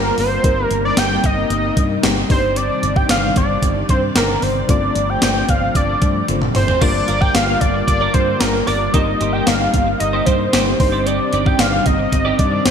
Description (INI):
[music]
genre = 1980s-style pop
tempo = 113 BPM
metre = 4/4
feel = straight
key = unclear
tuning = A4 = 440 Hz
[part]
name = fat analog lead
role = melody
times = 0.0-12.7 s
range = Bb4 to G5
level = -19 LUFS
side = equal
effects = chorus, shimmer reverb
[part]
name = FM electric piano with tremolo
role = accompaniment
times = 0.0-12.7 s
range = G3 to C5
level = -24 LUFS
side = left 6 dB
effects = shimmer reverb
[part]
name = soft string machine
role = sustained chords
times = 0.0-12.7 s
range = C3 to D5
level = -24 LUFS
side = equal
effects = ensemble chorus, shimmer reverb
[part]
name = vintage muted fingered electric bass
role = bass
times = 0.0-12.7 s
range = G1 to G2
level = -23 LUFS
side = equal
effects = none
[part]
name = gated 80s digital drum machine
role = drums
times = 0.2-12.7 s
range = crash cymbal, hi-hat, kick drum, snare drum, tambourine, toms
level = -18 LUFS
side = equal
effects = gated reverb, gated reverb snare
[part]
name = twelve-string electric guitar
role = riff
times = 6.8-12.6 s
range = Eb4 to D5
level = -26 LUFS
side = right 5 dB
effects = ensemble chorus, shimmer reverb
[sound]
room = moderate lush hall reverb, RT60 1.7 s, digital ambience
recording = bright 1980s-style digital production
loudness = -14 LUFS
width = side -7 dB against mid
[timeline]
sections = 0.0-12.7 A section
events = drum fill 6.3-6.8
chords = 0.4 Eb6/G; 2.3 Cmadd9/G; 4.7 Dm7/G; 6.8 Gm7; 8.9 Eb6/G; 10.8 Cmadd9/G